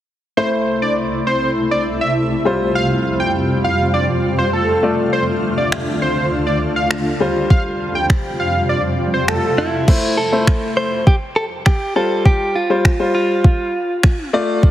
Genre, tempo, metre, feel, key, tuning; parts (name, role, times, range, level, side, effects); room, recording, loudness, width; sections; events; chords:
dance-pop; 101 BPM; 4/4; straight; F major; A4 = 442 Hz
wide unison lead; melody; 0.4-9.7 s; A4 to G5; -20 LUFS; right 1 dB; tape echo
clear concert grand piano; accompaniment; 0.4-14.7 s; G3 to D5; -20 LUFS; left 2 dB; sidechain pumping
shimmering ambient pad; sustained chords; 0.7-9.9 s; C2 to F4; -20 LUFS; equal; chorus, built-in reverb, sidechain pumping
smooth R&B drum kit; drums; 5.7-14.7 s; crash cymbal, finger snaps, kick drum; -15 LUFS; equal
swell; sound effects; 8.8-9.9 s; -30 LUFS; right 1 dB
direct-recorded clean electric guitar; melody; 9.6-14.3 s; E4 to C5; -19 LUFS; right 1 dB; tape echo
moderate lush hall reverb, RT60 2.7 s; heavily compressed radio sound, multiband compression; -15 LUFS; side -12 dB against mid
0.4-9.9 A section; 9.9-14.7 B section
kick muted 8.7-9.9; swell 8.8-9.9
0.4 C6; 2.5 Fsus2; 4.8 Dm; 7.2 Fsus2; 9.9 C6; 12.0 Fsus2